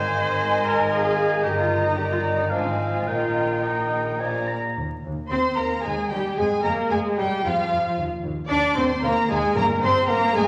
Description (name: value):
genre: quick classical-period movement for symphony orchestra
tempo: 112 BPM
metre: 3/4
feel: rubato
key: Eb major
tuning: A4 = 435 Hz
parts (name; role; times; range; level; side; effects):
- rich chamber violin section; melody; 0.0-10.5 s; F5 to D6; -29 LUFS; equal; none
- clear oboe; second line; 0.0-4.8 s; F5 to Bb5; -32 LUFS; equal; none
- dark clarinet; second line; 0.0-4.5 s; D5 to Eb5; -33 LUFS; equal; none
- mellow hollow flute section; second line; 0.0-4.3 s; Ab5 to Bb5; -32 LUFS; equal; none
- rich chamber violin section; second line; 0.0-10.5 s; F4 to G5; -33 LUFS; equal; none
- bright chamber viola section; accompaniment; 0.0-10.5 s; C4 to D5; -30 LUFS; equal; none
- mellow bassoon; accompaniment; 0.0-4.5 s; Eb3 to F3; -30 LUFS; equal; none
- clear chamber double bass section; bass; 0.0-10.4 s; G1 to G2; -33 LUFS; equal; none
- rich chamber cello section; bass; 0.0-10.5 s; G2 to D4; -32 LUFS; equal; none
- warm French horn section; sustained chords; 5.3-10.5 s; F3 to D4; -29 LUFS; equal; none
- timpani; percussion; 9.6-10.3 s; G2; -34 LUFS; equal; none
room: wet recital hall reverb, RT60 1.5 s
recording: vinyl crackle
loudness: -23 LUFS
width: mono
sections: 0.0-4.8 A section; 4.8-10.5 B section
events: none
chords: 0.0 Ab; 1.4 Eb/G; 2.5 Fm7/Ab; 3.1 Eb/Bb; 4.2 Bb; 4.8 Eb; 6.4 Bb5/F; 8.0 Eb5; 9.6 Abmaj9/G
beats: 0.37 0.91 | 1.43 1.97 2.51 | 3.07 3.64 4.21 | 4.76 5.31 5.84 | 6.38 6.91 7.44 | 7.97 8.50 9.03 | 9.56 10.09